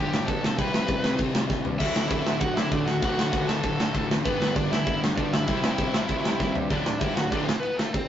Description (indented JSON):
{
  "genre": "punk rock",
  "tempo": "196 BPM",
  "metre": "4/4",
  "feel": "straight",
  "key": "D mixolydian",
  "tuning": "A4 = 441 Hz",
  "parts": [
    { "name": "bluesy overdriven lead guitar", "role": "melody", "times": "0.0-8.1 s", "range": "A3 to B5", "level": "-30 LUFS", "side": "equal", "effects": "distortion, digital delay" },
    { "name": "crunchy overdriven guitar", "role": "riff", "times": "0.0-7.5 s", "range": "D2 to C5", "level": "-30 LUFS", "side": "left 6 dB", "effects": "none" },
    { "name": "sludgy distorted guitar", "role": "riff", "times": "0.0-7.5 s", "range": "D2 to C4", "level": "-35 LUFS", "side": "right 6 dB", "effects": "none" },
    { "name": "fuzz picked electric bass", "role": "bass", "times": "0.0-7.5 s", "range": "D1 to G2", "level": "-33 LUFS", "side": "equal", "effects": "overdrive" },
    { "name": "big rock drum kit", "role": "drums", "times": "0.1-8.0 s", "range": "crash cymbal, kick drum, ride cymbal, snare drum, toms", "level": "-26 LUFS", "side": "equal", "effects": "none" },
    { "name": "distorted electric guitar", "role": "riff", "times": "1.8-7.5 s", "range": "D2 to C4", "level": "-34 LUFS", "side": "right 3 dB", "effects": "none" }
  ],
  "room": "light reverb",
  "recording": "rough rehearsal-room recording, tube saturation, nothing above 7.7 kHz",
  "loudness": "-23 LUFS",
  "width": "side -10 dB against mid",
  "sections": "0.0-6.7 A section; 6.7-8.1 B section",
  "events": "drum fill 1.5-1.8, 6.4-6.7",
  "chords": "0.0 G; 0.6 C; 1.8 D; 4.2 G; 5.5 C; 6.7 D"
}